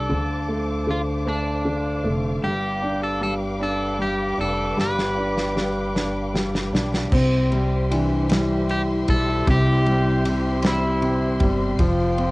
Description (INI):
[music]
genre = six-eight pop ballad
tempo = 51 BPM (dotted quarters)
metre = 6/8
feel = straight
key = C major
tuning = A4 = 435 Hz
[part]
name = electric guitar at the edge of break-up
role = melody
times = 0.0-11.5 s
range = D4 to B4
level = -26 LUFS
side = equal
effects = cassette tape
[part]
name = clear baby grand piano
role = accompaniment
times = 0.0-12.3 s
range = C3 to D4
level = -24 LUFS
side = equal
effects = cassette tape
[part]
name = warm studio string section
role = sustained chords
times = 0.0-12.3 s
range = G4 to D6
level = -31 LUFS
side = equal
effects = cassette tape
[part]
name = upright bass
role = bass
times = 0.0-12.3 s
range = F1 to D2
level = -25 LUFS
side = equal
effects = none
[part]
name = loose indie drum kit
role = drums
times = 4.8-12.3 s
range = crash cymbal, kick drum, ride cymbal, snare drum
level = -24 LUFS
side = equal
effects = cassette tape
[part]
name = warm French horn section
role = second line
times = 7.1-12.3 s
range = C4 to F4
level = -26 LUFS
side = left 2 dB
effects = cassette tape
[sound]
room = light reverb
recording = home recording on cassette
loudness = -19 LUFS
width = side -22 dB against mid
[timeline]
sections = 0.0-7.1 A section; 7.1-12.3 B section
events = drum fill 4.8-7.1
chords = 0.1 Dm7; 2.4 G7; 7.1 C; 11.8 Fsus2